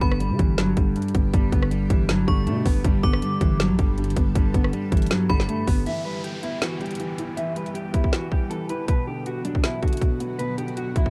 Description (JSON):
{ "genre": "hip hop, trap", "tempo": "159 BPM", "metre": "4/4", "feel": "half-time", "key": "unclear", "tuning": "A4 = 440 Hz", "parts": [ { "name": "electric guitar at the edge of break-up", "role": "melody", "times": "0.0-11.1 s", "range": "E3 to E5", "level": "-30 LUFS", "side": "equal", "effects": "spring reverb, low-pass filter, tape echo" }, { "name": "metallic FM bell", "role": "second line", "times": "0.0-5.8 s", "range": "B5 to D6", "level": "-35 LUFS", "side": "equal", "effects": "chorus, tape echo" }, { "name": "dark concert grand piano", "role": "accompaniment", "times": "0.0-11.1 s", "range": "G2 to E4", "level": "-31 LUFS", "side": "equal", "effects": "low-pass filter" }, { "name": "granular cloud pad", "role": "sustained chords", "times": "0.9-11.1 s", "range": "D3 to A4", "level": "-39 LUFS", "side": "equal", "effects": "none" }, { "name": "growling 808-style bass", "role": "bass", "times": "0.0-5.9 s", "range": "G1 to D3", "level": "-28 LUFS", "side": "equal", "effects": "none" }, { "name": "trap drum kit", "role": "drums", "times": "0.0-11.1 s", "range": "hi-hat, kick drum, rim click, snare drum", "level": "-24 LUFS", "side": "equal", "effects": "none" }, { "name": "downlifter", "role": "sound effects", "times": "5.9-8.9 s", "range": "none", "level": "-43 LUFS", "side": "equal", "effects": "none" } ], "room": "little or no reverb", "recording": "dark, warm production", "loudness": "-23 LUFS", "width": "mono", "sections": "0.0-5.9 A section; 5.9-11.1 B section", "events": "none", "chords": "0.0 G; 5.9 Em; 8.9 Bm", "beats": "0.20 0.58 0.96 | 1.33 1.71 2.09 2.47 | 2.85 3.22 3.60 3.98 | 4.35 4.73 5.11 5.49 | 5.86 6.24 6.62 7.00 | 7.37 7.75 8.13 8.51 | 8.88 9.26 9.64 10.02 | 10.39 10.77" }